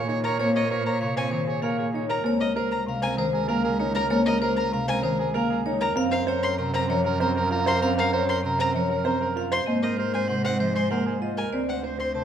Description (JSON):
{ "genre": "classical, minimalist pattern music", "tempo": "194 BPM", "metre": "6/4", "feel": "straight", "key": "unclear", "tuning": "A4 = 439 Hz", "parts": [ { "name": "bright soprano saxophone", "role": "second line", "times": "0.0-12.2 s", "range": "Bb4 to Db5", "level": "-30 LUFS", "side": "right 2 dB", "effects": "none" }, { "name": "clear concert grand piano", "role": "arpeggios", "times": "0.0-12.2 s", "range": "C4 to C5", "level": "-29 LUFS", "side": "right 5 dB", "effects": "none" }, { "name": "warm cello", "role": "bass", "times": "0.0-12.2 s", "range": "Db2 to Bb2", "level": "-30 LUFS", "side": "right 1 dB", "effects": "none" }, { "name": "vibraphone with hard mallets", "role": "melody", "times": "0.1-12.2 s", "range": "C5 to Bb5", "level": "-30 LUFS", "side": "left 7 dB", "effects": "none" }, { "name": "warm violin", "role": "arpeggios", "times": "0.2-12.1 s", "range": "Eb5 to C6", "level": "-31 LUFS", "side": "left 3 dB", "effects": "none" }, { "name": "folk marimba with medium mallets", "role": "accompaniment", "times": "0.4-12.2 s", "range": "C3 to C4", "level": "-29 LUFS", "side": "equal", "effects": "none" } ], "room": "moderate recital hall reverb, RT60 1.8 s", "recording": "none", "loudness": "-22 LUFS", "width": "side -9 dB against mid", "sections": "0.0-12.2 A section", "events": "none", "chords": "0.0 Bbm9; 2.3 Db69; 6.0 Gbmaj7; 9.7 Ab9; 11.5 D7" }